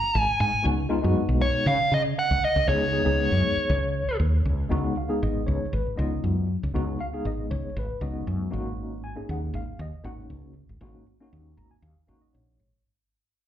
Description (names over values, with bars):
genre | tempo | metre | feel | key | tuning
electric jazz fusion | 118 BPM | 4/4 | swing 53% on 16ths | Db mixolydian | A4 = 440 Hz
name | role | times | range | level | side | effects
dark smooth lead guitar | melody | 0.0-4.2 s | Db5 to Bb5 | -25 LUFS | right 1 dB | overdrive, plate reverb, slapback echo, tape echo
woody fretless electric bass | bass | 0.0-12.8 s | Ab1 to Db3 | -26 LUFS | equal | none
tine electric piano | accompaniment | 0.6-12.8 s | Ab3 to Bb5 | -30 LUFS | left 2 dB | medium tremolo, analog chorus, plate reverb, slapback echo
room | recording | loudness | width
light reverb | live gig heard through the venue's PA, club reverb | -23 LUFS | side -10 dB against mid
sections
0.0-4.7 A section; 4.7-12.9 B section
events
fade-out 4.7-12.9; tine electric piano fill 11.3-12.9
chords
0.0 N.C.; 0.6 Db9sus4; 8.5 Ab9sus4